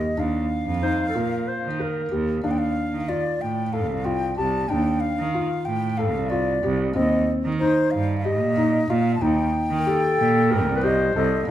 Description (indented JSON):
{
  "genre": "contemporary instrumental, chamber music in an uneven meter",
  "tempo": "186 BPM (eighths)",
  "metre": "7/8",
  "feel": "straight",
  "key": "unclear",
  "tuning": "A4 = 441 Hz",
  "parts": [
    { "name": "wooden flute", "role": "melody", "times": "0.0-11.5 s", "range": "C5 to A5", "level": "-27 LUFS", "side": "left 1 dB", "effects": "none" },
    { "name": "felt-muted upright piano", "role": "arpeggios", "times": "0.0-11.5 s", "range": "C4 to Bb4", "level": "-25 LUFS", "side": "left 3 dB", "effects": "none" },
    { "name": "rich cello", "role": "bass", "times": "0.2-11.5 s", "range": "C2 to Eb3", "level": "-24 LUFS", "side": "right 3 dB", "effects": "none" },
    { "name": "mellow clarinet", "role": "second line", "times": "0.8-2.5, 9.8-11.5 s", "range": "A4 to C5", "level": "-26 LUFS", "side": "left 1 dB", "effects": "none" }
  ],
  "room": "moderate recital hall reverb, RT60 1.5 s",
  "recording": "minimal, uncompressed stereo recording",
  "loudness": "-20 LUFS",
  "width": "side -12 dB against mid",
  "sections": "0.0-2.4 A section; 2.4-11.5 B section",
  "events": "none",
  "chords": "0.2 Ebsus2; 2.4 Dm7; 7.0 Cm7/Eb; 9.2 Eb6",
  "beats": "| 0.18 0.50 0.83 1.15 1.47 1.79 2.12 | 2.44 2.76 3.09 3.41 3.73 4.05 4.38 | 4.70 5.02 5.35 5.67 5.99 6.32 6.64 | 6.96 7.28 7.61 7.93 8.25 8.57 8.90 | 9.22 9.54 9.87 10.19 10.51 10.84 11.16 | 11.48"
}